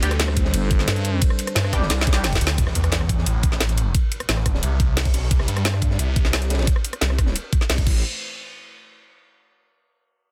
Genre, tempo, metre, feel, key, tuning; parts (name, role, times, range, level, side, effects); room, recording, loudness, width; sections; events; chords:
dark technical drum and bass; 176 BPM; 4/4; straight; A minor; A4 = 440 Hz
dark analog pad; sustained chords; 0.0-2.6, 8.0 s; G3 to C5; -33 LUFS; equal; chorus, sidechain pumping
band-passed chord stab; stabs; 0.0-2.3 s; G3 to G4; -32 LUFS; equal; phaser, ensemble chorus, delay
phased detuned saw bass; bass; 0.0-8.0 s; A1 to G2; -24 LUFS; equal; phaser, tube saturation, sidechain pumping
crunchy breakbeat drum kit; drums; 0.0-7.9 s; hi-hat, ride cymbal, snare drum; -35 LUFS; equal; high-pass filter on cymbals, high-pass filter on hats, high-pass filter on snare, high-pass filter on room
drum and bass drum kit; drums; 0.0-7.9 s; crash cymbal, hi-hat, ride cymbal, rim click, snare drum; -27 LUFS; equal; overdrive
electronic kick drum; drums; 0.4-7.9 s; -23 LUFS; equal; overdrive
growling FM bass; bass; 0.5-2.4 s; G1 to G2; -25 LUFS; equal
impact; sound effects; 2.6-3.9 s; -34 LUFS; equal
small room ambience; dense, heavily limited modern master; -21 LUFS; mono
0.0-2.6 A section; 2.6-8.0 B section; 8.0-9.4 C section
drop 0.0-2.6; drum fill 1.9-2.6; band accent 2.5; impact 2.6-3.9
0.0 Gsus4; 2.6 Am; 5.3 C5; 7.9 Amadd9; 8.0 N.C.